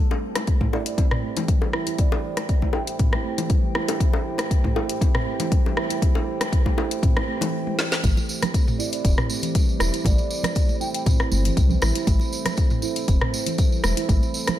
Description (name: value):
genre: afro house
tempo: 119 BPM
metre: 4/4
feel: straight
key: A minor pentatonic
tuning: A4 = 441 Hz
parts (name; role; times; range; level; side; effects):
- dark analog pad; sustained chords; 0.0-14.6 s; A3 to G5; -32 LUFS; right 2 dB; chorus, sidechain pumping
- handpan; arpeggios; 0.0-14.2 s; E3 to E4; -29 LUFS; right 4 dB; sidechain pumping, low-pass filter, dub echo
- bongos; percussion; 0.1-7.5 s; none; -30 LUFS; left 5 dB; none
- afro-pop drum kit; drums; 0.4-14.6 s; hi-hat, rim click, snare drum, toms; -27 LUFS; left 1 dB; studio reverb
- electronic kick drum; drums; 0.5-14.2 s; none; -20 LUFS; left 1 dB; studio reverb
- breathy mellow bass bansuri; melody; 0.7-3.0, 8.8-11.0 s; D5 to G5; -35 LUFS; right 2 dB; dub echo
- warm sub bass; bass; 8.0-14.2 s; E1 to C2; -23 LUFS; left 1 dB; sidechain pumping
- congas; percussion; 8.0-14.6 s; none; -29 LUFS; right 5 dB; none
- tambourine; percussion; 8.0-14.6 s; none; -32 LUFS; right 3 dB; none
room: studio ambience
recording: none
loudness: -20 LUFS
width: side -12 dB against mid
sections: 0.0-8.0 A section; 8.0-14.6 B section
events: build-up 0.0-8.0; filter sweep on handpan 0.0-8.0; break 7.5-8.0; drum fill 7.7-8.0; drop 8.0-14.6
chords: 0.0 Am7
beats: 0.47 0.98 1.48 | 1.99 2.49 3.00 3.50 | 4.00 4.51 5.01 5.52 | 6.02 6.53 7.03 7.53 | 8.04 8.54 9.05 9.55 | 10.05 10.56 11.06 11.57 | 12.07 12.58 13.08 13.59 | 14.09